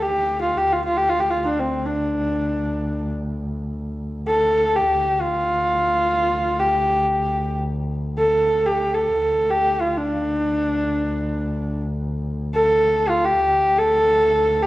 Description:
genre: mongolian traditional, Mongolian folk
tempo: free time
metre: none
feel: none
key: D yu mode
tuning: A4 = 441 Hz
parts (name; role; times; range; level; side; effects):
- rich horsehead fiddle; melody; 0.0-14.7 s; C4 to A4; -18 LUFS; equal; none
- muted double bass; drone; 0.0-14.7 s; D2; -28 LUFS; equal; none
room: wet recital hall reverb, RT60 1.6 s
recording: worn, warbling old tape, cassette tape, warbly pitch drift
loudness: -18 LUFS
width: side -16 dB against mid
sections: 0.0-14.7 A section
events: none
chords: none

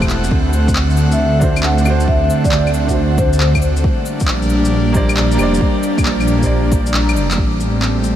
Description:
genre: future garage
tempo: 136 BPM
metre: 4/4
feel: swing 67% on 16ths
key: unclear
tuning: A4 = 440 Hz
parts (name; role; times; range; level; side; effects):
- felt-muted upright piano; accompaniment; 0.0-7.4 s; D3 to D5; -22 LUFS; right 2 dB; vintage 12-bit sampler grit, sidechain pumping, diffuse ambient delay
- airy breathy pad; sustained chords; 0.0-8.2 s; D3 to F#5; -18 LUFS; equal; chorus, sidechain pumping
- dark detuned saw bass; bass; 0.0-8.2 s; E1 to D2; -16 LUFS; equal; sidechain pumping
- electronic kick drum; drums; 0.0-7.5 s; none; -18 LUFS; equal; overdrive, small room ambience
- electronic shaker, claves, handclaps and cabasa; drums; 0.0-8.2 s; none; -23 LUFS; left 1 dB; overdrive, small room ambience
- vibraphone with soft mallets; melody; 1.1-3.8 s; C5 to F#5; -22 LUFS; left 1 dB; diffuse ambient delay
room: moderate huge ambient reverb, RT60 6.1 s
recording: dreamy mix soaked in reverb, vinyl crackle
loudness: -12 LUFS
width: side -11 dB against mid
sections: 0.0-7.4 A section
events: kick drops out 6.9-7.4; drum fill 6.9-7.4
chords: 0.3 D7; 3.8 Bb69; 7.4 Am7

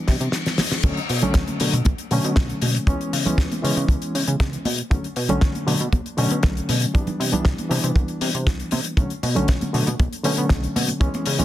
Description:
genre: nu-disco, nu disco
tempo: 118 BPM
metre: 4/4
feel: straight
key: B minor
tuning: A4 = 440 Hz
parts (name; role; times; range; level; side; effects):
- barky reed electric piano; accompaniment; 0.0-11.4 s; D3 to D4; -25 LUFS; equal; overdrive, fast tremolo, slapback echo
- reverse cymbal; sound effects; 0.0-0.8 s; none; -32 LUFS; left 7 dB; none
- chorused synth bass; bass; 0.1-11.4 s; B1 to C#3; -25 LUFS; equal; none
- damped 70s drum kit; drums; 0.1-11.4 s; crash cymbal, hi-hat, snare drum; -26 LUFS; left 3 dB; none
- kick drum; drums; 0.1-11.1 s; none; -19 LUFS; equal; none
- congas; percussion; 0.6-11.4 s; none; -29 LUFS; right 2 dB; none
room: small room ambience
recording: dense, heavily limited modern master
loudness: -19 LUFS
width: side -13 dB against mid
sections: 0.0-11.4 A section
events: reverse cymbal 0.0-0.8; drum fill 0.1-0.8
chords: 0.0 Cmaj9; 0.8 Bm9; 2.9 C#m7; 4.7 Bm9; 6.9 Cmaj9; 9.0 Bm9

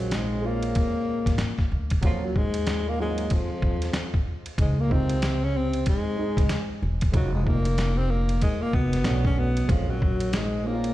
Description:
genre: hip hop, jazz-hop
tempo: 94 BPM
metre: 4/4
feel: swing 60% on 16ths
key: Eb dorian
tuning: A4 = 440 Hz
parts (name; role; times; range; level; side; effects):
- breathy alto saxophone; melody; 0.0-10.9 s; F3 to C#4; -29 LUFS; equal; ping-pong delay
- breathy trombone; second line; 0.0-10.9 s; F2 to Db3; -34 LUFS; left 8 dB; none
- dark baby grand piano; accompaniment; 0.0-10.9 s; Gb3 to Ab4; -33 LUFS; right 5 dB; none
- upright bass; bass; 0.0-10.9 s; Fb1 to Eb2; -27 LUFS; equal; none
- trip hop sampler-style drum kit; drums; 0.1-10.9 s; hi-hat, kick drum, ride cymbal, snare drum; -25 LUFS; equal; none
room: light reverb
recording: played on a big sound system in a bare room, stone room reverb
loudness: -22 LUFS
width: side -15 dB against mid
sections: 0.0-10.9 A section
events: none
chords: 0.0 Bbm9; 2.0 Ebm9; 4.6 Dbmaj7sus2; 7.1 Fm7; 9.1 Bm9; 9.7 Bbm9

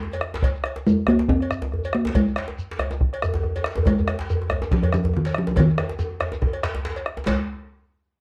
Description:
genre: west african traditional, West African drum ensemble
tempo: 140 BPM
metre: 4/4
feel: swing 55% on 16ths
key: Ab major pentatonic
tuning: A4 = 441 Hz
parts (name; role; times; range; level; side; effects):
- talking drum; melody; 0.0-7.5 s; Eb3 to C4; -23 LUFS; equal; none
- djembe; percussion; 0.0-7.5 s; none; -30 LUFS; equal; none
- cowbell; percussion; 0.1-7.5 s; none; -35 LUFS; equal; none
- djembe; percussion; 0.1-7.5 s; none; -34 LUFS; equal; none
- shekere; percussion; 0.1-7.5 s; none; -35 LUFS; equal; none
- bombo; percussion; 0.2-7.5 s; none; -27 LUFS; equal; none
room: moderate studio reverb, RT60 0.6 s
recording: dark, warm production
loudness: -23 LUFS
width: mono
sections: 0.0-7.3 A section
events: drum fill 5.6-7.3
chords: none

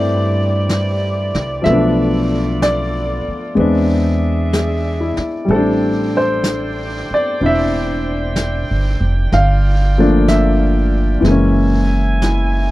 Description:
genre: jazz ballad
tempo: 62 BPM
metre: 4/4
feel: swing 68% on 8ths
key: unclear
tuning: A4 = 440 Hz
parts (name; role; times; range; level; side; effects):
- warm baby grand piano; accompaniment; 0.0-12.7 s; E3 to F5; -16 LUFS; left 1 dB; none
- dark saxophone section; sustained chords; 0.0-12.7 s; B3 to G#5; -26 LUFS; right 2 dB; none
- upright bass; bass; 0.0-12.7 s; E1 to G2; -17 LUFS; right 1 dB; none
- vintage brush drum kit; drums; 0.7-12.7 s; brushed snare drum, hi-hat, snare drum; -26 LUFS; equal; none
room: little or no reverb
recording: dry, close 1970s-style studio recording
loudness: -13 LUFS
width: side -17 dB against mid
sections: 0.0-12.7 A section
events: none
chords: 0.0 Cmaj9; 1.6 Bm7b5; 3.6 E7b13; 5.5 Am7; 9.3 Gm7; 11.2 F#9

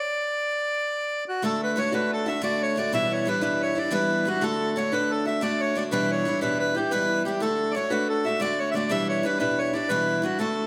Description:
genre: celtic folk, Celtic slip jig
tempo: 120 BPM (dotted quarters)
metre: 9/8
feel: straight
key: D major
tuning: A4 = 441 Hz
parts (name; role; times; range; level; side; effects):
- accordion; melody; 0.0-10.7 s; F#4 to E5; -28 LUFS; equal; none
- picked steel-string acoustic guitar; accompaniment; 1.4-10.7 s; E2 to F#4; -28 LUFS; equal; none
room: moderate recital hall reverb, RT60 1.7 s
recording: close, detailed microphones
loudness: -25 LUFS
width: mono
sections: 0.0-1.4 A section; 1.4-10.7 A section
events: none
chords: 0.0 N.C.; 1.4 D; 2.9 Em7; 4.4 D; 5.9 Em7; 7.4 D; 8.9 Em7

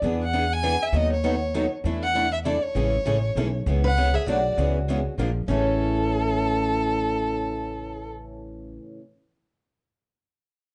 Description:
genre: acoustic string swing (jazz manouche)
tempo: 198 BPM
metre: 3/4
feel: swing 58% on 8ths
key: A major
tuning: A4 = 440 Hz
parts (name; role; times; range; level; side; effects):
- picked acoustic archtop guitar; accompaniment; 0.0-9.0 s; A2 to Bb4; -32 LUFS; equal; none
- picked steel-string acoustic guitar; accompaniment; 0.0-9.0 s; A2 to B4; -35 LUFS; equal; none
- upright bass; bass; 0.0-8.8 s; A1 to E2; -29 LUFS; equal; none
- warm violin; melody; 0.2-8.1 s; A4 to G#5; -28 LUFS; equal; none
- picked steel-string acoustic guitar; second line; 3.8-8.8 s; C#4 to B4; -33 LUFS; equal; none
room: moderate club reverb, RT60 0.7 s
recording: dark, warm production, nothing above 10.5 kHz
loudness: -24 LUFS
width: mono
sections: 0.0-3.7 A section; 3.7-5.5 B section; 5.5-7.3 C section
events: none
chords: 0.0 E9; 0.9 B7/D#; 1.8 E9sus4; 2.8 Amaj9; 3.7 C#m7; 4.3 Bm7; 4.6 C#m7; 5.2 Bb7; 5.5 A

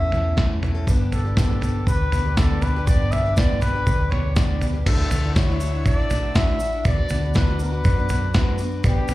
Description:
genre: indie folk with a building arrangement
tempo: 120 BPM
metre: 4/4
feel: straight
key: D major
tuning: A4 = 440 Hz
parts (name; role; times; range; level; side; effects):
- mellow trumpet; melody; 0.0-9.1 s; G4 to E5; -27 LUFS; left 1 dB; slapback echo
- fingerpicked steel-string acoustic guitar; accompaniment; 0.0-0.9 s; E2 to C#4; -33 LUFS; left 1 dB; slapback echo
- picked acoustic archtop guitar; accompaniment; 0.0-9.1 s; G2 to A4; -30 LUFS; left 2 dB; slapback echo
- hollow-body short-scale fingered electric bass; bass; 0.0-9.1 s; G1 to F#2; -23 LUFS; equal; none
- boom bap sampler-style drum kit; drums; 0.1-9.1 s; crash cymbal, kick drum, snare drum, toms; -21 LUFS; equal; none
- warm chamber string section; sustained chords; 0.9-9.1 s; D4 to E6; -37 LUFS; left 1 dB; none
- tube shaker; percussion; 0.9-9.1 s; none; -42 LUFS; right 2 dB; none
room: studio reverb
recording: live gig heard through the venue's PA, club reverb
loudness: -18 LUFS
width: side -17 dB against mid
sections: 0.0-4.9 A section; 4.9-9.1 B section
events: none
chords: 0.0 A; 0.9 G; 4.9 Dadd9; 6.9 Bm/D

